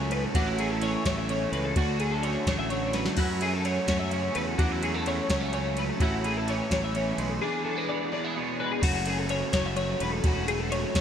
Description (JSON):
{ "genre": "math rock and midwest emo", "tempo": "85 BPM (dotted quarters)", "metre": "6/8", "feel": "straight", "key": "unclear", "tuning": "A4 = 439 Hz", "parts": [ { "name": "twangy electric guitar", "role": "accompaniment", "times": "0.0-8.8 s", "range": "D2 to F#4", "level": "-34 LUFS", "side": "right 6 dB", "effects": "ensemble chorus" }, { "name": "twelve-string electric guitar", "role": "arpeggios", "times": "0.0-11.0 s", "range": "F#4 to E5", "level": "-30 LUFS", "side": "left 3 dB", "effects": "ensemble chorus, digital delay" }, { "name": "overdriven electric guitar", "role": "riff", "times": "0.0-11.0 s", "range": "F#2 to G#4", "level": "-32 LUFS", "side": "right 1 dB", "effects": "lush chorus" }, { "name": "fuzz fingered electric bass", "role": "bass", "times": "0.0-11.0 s", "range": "E1 to F#2", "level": "-31 LUFS", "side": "equal", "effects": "overdrive" }, { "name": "soft vintage rhythm box", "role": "drums", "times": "0.1-11.0 s", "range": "crash cymbal, kick drum, ride cymbal, snare drum", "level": "-31 LUFS", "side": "equal", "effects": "overdrive, gated reverb" } ], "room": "moderate lush hall reverb, RT60 2.4 s", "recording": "bright 1980s-style digital production", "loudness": "-25 LUFS", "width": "side -8 dB against mid", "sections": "0.0-8.8 A section; 8.8-11.0 B section", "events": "drum fill 2.9", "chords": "0.3 Amaj7; 3.2 F#m7; 6.0 Amaj7; 7.4 E7; 8.8 F#m7" }